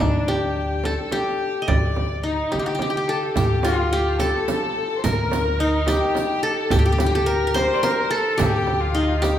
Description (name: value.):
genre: Arabic maqam ensemble.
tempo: 72 BPM (dotted quarters).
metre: 6/8.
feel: straight.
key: unclear.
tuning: A4 = 440 Hz.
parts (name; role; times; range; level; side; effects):
qanun; melody; 0.0-9.4 s; D4 to Eb5+25c; -22 LUFS; left 1 dB; none.
rich violin; second line; 0.0-9.4 s; D4 to D5; -28 LUFS; left 5 dB; none.
upright bass; bass; 0.0-9.3 s; D2 to D3; -24 LUFS; equal; none.
darbuka; percussion; 0.0-9.4 s; none; -29 LUFS; right 1 dB; none.
frame drum; percussion; 0.0-9.4 s; none; -29 LUFS; right 3 dB; none.
dark studio violin section; second line; 2.2-9.4 s; Eb4 to C5; -28 LUFS; left 1 dB; none.
riq; percussion; 3.4-9.4 s; none; -35 LUFS; right 4 dB; none.
room: wet recital hall reverb, RT60 1.6 s.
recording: recorded in a church or concert hall.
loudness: -19 LUFS.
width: side -10 dB against mid.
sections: 0.0-3.4 A section; 3.4-9.4 B section.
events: drum fill 2.8-3.4.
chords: none.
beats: | 0.00 0.84 | 1.68 2.52 | 3.36 4.20 | 5.04 5.88 | 6.72 7.56 | 8.40 9.24.